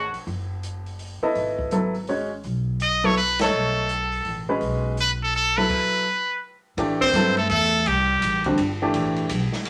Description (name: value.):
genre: modal jazz.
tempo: 166 BPM.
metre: 3/4.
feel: swing 64% on 8ths.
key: unclear.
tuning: A4 = 442 Hz.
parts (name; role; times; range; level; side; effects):
trumpet with straight mute; melody; 0.0-0.1, 2.8-8.5 s; F#4 to D#5; -24 LUFS; equal; none.
upright bass; bass; 0.0-9.7 s; F#1 to A2; -31 LUFS; equal; none.
open jazz drum kit; drums; 0.1-9.7 s; crash cymbal, hi-hat, kick drum, ride cymbal, snare drum; -37 LUFS; equal; none.
bright upright piano; accompaniment; 1.2-9.3 s; D3 to D#5; -26 LUFS; equal; none.
growling tenor saxophone; second line; 7.0-8.5 s; G3 to C4; -27 LUFS; equal; none.
room: wet studio reverb, RT60 0.6 s.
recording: none.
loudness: -23 LUFS.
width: mono.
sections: 0.0-6.8 A section; 6.8-9.7 B section.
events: band accent 3.4; stop 5.7-6.8.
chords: 0.0 C#9sus4; 2.4 B9sus4; 6.8 Am11.